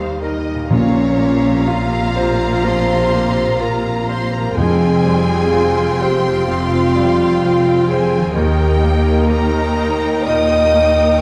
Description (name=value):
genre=cinematic, emotional film score for orchestra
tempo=63 BPM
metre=4/4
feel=rubato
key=unclear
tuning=A4 = 440 Hz
part: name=rich studio violin section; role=melody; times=0.0-11.2 s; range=Db5 to Eb6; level=-28 LUFS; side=equal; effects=none
part: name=warm studio violin section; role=second line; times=0.0-11.2 s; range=Bb4 to C6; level=-28 LUFS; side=equal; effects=none
part: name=bright concert grand piano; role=accompaniment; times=0.0-11.2 s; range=Eb2 to Eb5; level=-23 LUFS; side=equal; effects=none
part: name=rich studio viola section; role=accompaniment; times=0.0-11.2 s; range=C3 to Bb4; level=-27 LUFS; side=equal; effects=none
part: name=concert harp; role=arpeggios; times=0.0-11.2 s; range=none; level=barely audible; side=none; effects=none
part: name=rich studio cello section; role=bass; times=0.0-11.2 s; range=Eb2 to Bb2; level=-25 LUFS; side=equal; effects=none
part: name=warm French horn section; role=sustained chords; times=0.2-11.2 s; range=Db4 to Eb5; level=-20 LUFS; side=equal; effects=none
part: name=clear studio double bass section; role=bass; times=0.7-11.2 s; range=F1 to Eb2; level=-24 LUFS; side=equal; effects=none
part: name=timpani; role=percussion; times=0.7-6.0 s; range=F2 to Bb2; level=-22 LUFS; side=equal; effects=none
room=wet scoring stage reverb, RT60 2.0 s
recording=none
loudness=-15 LUFS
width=mono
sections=0.7-11.2 A section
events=none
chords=0.0 Ebadd9; 0.7 Bbmadd9; 4.6 Fmadd9; 8.4 Eb